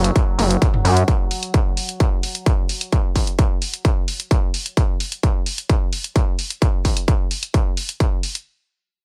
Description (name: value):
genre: driving peak-time techno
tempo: 130 BPM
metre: 4/4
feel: straight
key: unclear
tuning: A4 = 440 Hz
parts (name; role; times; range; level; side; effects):
- gritty driven synth bass; bass; 0.0-1.0 s; F#1 to F#2; -17 LUFS; equal; sidechain pumping
- overtone-sweeping drone; drone; 0.0-1.1 s; F#3; -34 LUFS; equal; chorus, built-in reverb, sidechain pumping
- punchy analog drum machine; drums; 0.0-8.4 s; hi-hat, toms; -28 LUFS; equal; sidechain pumping on hats, sidechain pumping on toms
- electronic kick drum; drums; 0.2-8.1 s; none; -20 LUFS; equal; distortion, overdrive
room: little or no reverb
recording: echo-heavy mix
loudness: -20 LUFS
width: mono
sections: 0.0-8.5 A section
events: none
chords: none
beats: 0.15 0.62 | 1.08 1.54 2.00 2.46 | 2.92 3.39 3.85 4.31 | 4.77 5.23 5.69 6.16 | 6.62 7.08 7.54 8.00